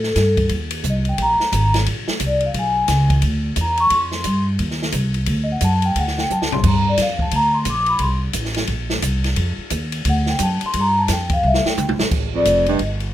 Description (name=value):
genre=jazz, small-group swing and bop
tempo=176 BPM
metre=4/4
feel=swing 63% on 8ths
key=F mixolydian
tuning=A4 = 440 Hz
part: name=vibraphone with soft mallets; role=melody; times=0.0-12.8 s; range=A4 to D6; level=-19 LUFS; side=left 1 dB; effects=none
part: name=upright bass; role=bass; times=0.0-13.1 s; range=F1 to A2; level=-20 LUFS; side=equal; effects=none
part: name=open jazz drum kit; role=drums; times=0.0-13.1 s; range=crash cymbal, hi-hat, kick drum, ride cymbal, snare drum, toms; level=-23 LUFS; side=equal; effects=none
part: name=warm baritone saxophone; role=second line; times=12.3-12.8 s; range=F2 to G2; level=-21 LUFS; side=right 5 dB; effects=none
room=little or no reverb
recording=close, detailed microphones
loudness=-16 LUFS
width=side -12 dB against mid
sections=0.0-12.1 A section; 12.1-13.1 B section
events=vibraphone solo 0.0-12.1; drum fill 6.3-6.6, 11.4-12.1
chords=0.0 F9 (rootless); 1.2 Bbsus2; 2.5 Bm69; 3.9 Fsus2; 5.3 D; 6.6 Gm7; 8.0 Am; 9.4 Ebsus2; 10.1 D; 10.7 Fsus2; 11.4 Csus2; 12.1 Fadd9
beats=0.16 0.50 0.84 | 1.18 1.52 1.87 2.21 | 2.55 2.89 3.23 3.57 | 3.91 4.25 4.60 4.94 | 5.28 5.62 5.96 6.30 | 6.64 6.99 7.33 7.67 | 8.01 8.35 8.70 9.04 | 9.38 9.72 10.06 10.40 | 10.75 11.09 11.43 11.77 | 12.12 12.46 12.80